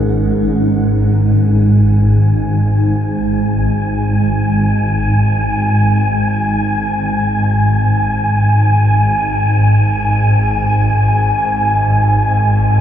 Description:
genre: dark ambient drone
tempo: free time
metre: none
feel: none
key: unclear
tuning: A4 = 440 Hz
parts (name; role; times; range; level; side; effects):
- dark analog pad; sustained chords; 0.0-0.5 s; C#4 to A#4; -26 LUFS; right 1 dB; chorus, phaser, shimmer reverb
- swarming drone; drone; 0.0-12.8 s; G#1 to G#2; -12 LUFS; equal; built-in reverb
- wind-like tuned noise texture; texture; 0.1-12.8 s; F#5 to G#5; -18 LUFS; equal; built-in reverb, shimmer reverb
room: wet cathedral reverb, RT60 6.5 s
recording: none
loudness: -11 LUFS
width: side -10 dB against mid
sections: 0.5-12.8 A section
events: none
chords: 0.0 G#sus2; 0.5 N.C.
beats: free time

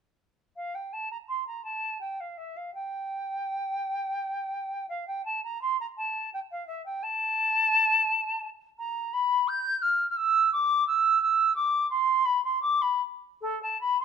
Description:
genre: classical, baroque-style fantasia for unaccompanied flute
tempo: 56 BPM (dotted quarters)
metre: 6/8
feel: rubato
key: unclear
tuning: A4 = 440 Hz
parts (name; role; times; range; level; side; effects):
- silver concert flute; solo; 0.6-14.0 s; A4 to G6; -25 LUFS; equal; none
room: moderate stone room reverb, RT60 1.0 s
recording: minimal, uncompressed stereo recording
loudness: -25 LUFS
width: side -7 dB against mid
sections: 0.6-14.0 A section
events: none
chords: none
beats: | 0.57 1.65 | 2.74 3.81 | 4.90 5.97 | 7.03 8.07 | 9.12 10.17 | 11.22 12.25 | 13.41

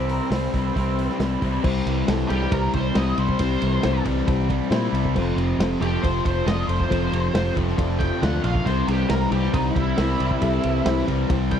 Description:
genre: classic rock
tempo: 137 BPM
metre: 4/4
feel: straight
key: C major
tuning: A4 = 440 Hz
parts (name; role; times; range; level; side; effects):
- octave-fuzz lead guitar; melody; 0.0-11.6 s; C4 to G5; -28 LUFS; equal; wah, distortion, tape echo
- crunchy overdriven guitar; second line; 0.0-1.2 s; Bb4 to C5; -36 LUFS; left 3 dB; phaser
- overdriven semi-hollow guitar; riff; 0.0-11.6 s; F2 to C4; -26 LUFS; left 10 dB; none
- raw garage guitar; riff; 0.0-11.6 s; F2 to F4; -28 LUFS; right 11 dB; overdrive
- picked electric bass; bass; 0.0-11.6 s; F1 to Bb2; -24 LUFS; right 1 dB; none
- vintage drum kit; drums; 0.1-11.6 s; crash cymbal, hi-hat, kick drum, ride cymbal, snare drum; -27 LUFS; right 1 dB; none
- dark upright piano; accompaniment; 1.6-11.6 s; E4 to Bb5; -31 LUFS; left 7 dB; none
room: small room ambience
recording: dry, close 1970s-style studio recording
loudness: -20 LUFS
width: side -8 dB against mid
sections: 0.0-1.6 A section; 1.6-11.6 B section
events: lead electric guitar solo 1.6-11.6; upright piano fill 3.8-5.2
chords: 0.0 C; 5.2 F; 8.7 C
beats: 0.31 0.76 1.20 | 1.64 2.08 2.52 2.96 | 3.40 3.83 4.27 4.71 | 5.15 5.59 6.03 6.47 | 6.91 7.35 7.79 8.22 | 8.66 9.10 9.54 9.98 | 10.42 10.86 11.30

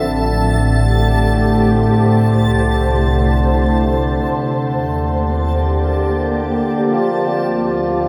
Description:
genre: ambient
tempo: 76 BPM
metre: 3/4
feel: straight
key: D minor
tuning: A4 = 440 Hz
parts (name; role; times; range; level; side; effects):
- glassy FM pad; sustained chords; 0.0-8.1 s; A2 to E5; -18 LUFS; equal; ensemble chorus, built-in reverb
- handpan; arpeggios; 0.0-8.1 s; C4 to G5; -38 LUFS; equal; none
- round analog bass; bass; 0.0-8.1 s; A1 to Eb2; -22 LUFS; equal; none
- pedal harmonium; drone; 0.0-8.1 s; D3 to F3; -23 LUFS; equal; none
- backwards swelling texture; texture; 0.0-6.9 s; A5 to A6; -28 LUFS; equal; built-in reverb
room: wet huge ambient reverb, RT60 7.8 s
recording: none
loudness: -16 LUFS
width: mono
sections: 0.0-6.9 A section; 6.9-8.1 B section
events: none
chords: 0.0 Am7; 2.1 C6; 4.5 Ebmaj7; 6.9 Dm7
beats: 0.57 1.36 | 2.15 2.94 3.73 | 4.52 5.31 6.10 | 6.88 7.67

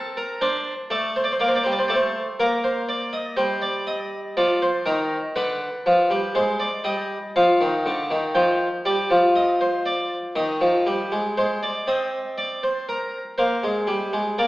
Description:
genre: classical, baroque-style two-part invention for harpsichord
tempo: 60 BPM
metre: 4/4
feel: straight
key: C minor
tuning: A4 = 442 Hz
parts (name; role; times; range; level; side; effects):
- harpsichord; solo; 0.0-14.5 s; D3 to G5; -20 LUFS; equal; none
room: wet recital hall reverb, RT60 1.5 s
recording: heard from further back in the room, AM radio sound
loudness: -20 LUFS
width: side -17 dB against mid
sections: 0.0-11.4 A section; 11.4-14.5 B section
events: none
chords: 0.0 D5/C; 1.4 Gm; 3.4 Cm/G; 5.4 G/D; 7.4 G5; 9.4 Cm; 11.4 Ab; 13.4 Bb7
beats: 0.43 1.41 2.41 | 3.39 4.38 5.36 6.36 | 7.36 8.36 9.36 10.36 | 11.37 12.38 13.38 14.38

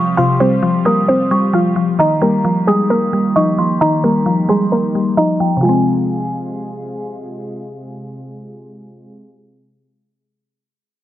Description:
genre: hip hop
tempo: 132 BPM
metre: 4/4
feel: half-time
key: F minor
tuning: A4 = 441 Hz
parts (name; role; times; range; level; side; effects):
- soft round pluck; melody; 0.0-7.0 s; Ab3 to F5; -17 LUFS; equal; chorus
- glassy synth bell; second line; 0.0-7.0 s; G5 to Eb6; -21 LUFS; right 1 dB; chorus, tape echo
- mallet-like synth pluck; accompaniment; 0.0-9.2 s; C3 to C4; -16 LUFS; left 1 dB; chorus
- warm studio string section; sustained chords; 0.0-9.1 s; C3 to Ab4; -27 LUFS; equal; none
room: little or no reverb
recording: dry, gritty hardware recording, low-pass filter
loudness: -12 LUFS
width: side -13 dB against mid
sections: 0.0-5.6 A section; 5.6-9.3 B section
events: filter sweep 0.0-5.6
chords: 0.0 Fsus2; 2.0 Ebadd9; 5.6 Fm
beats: | 0.17 0.63 1.08 1.54 | 1.99 2.45 2.90 3.36 | 3.81 4.27 4.72 5.17 | 5.63 6.08 6.54 6.99 | 7.45 7.90 8.36 8.81

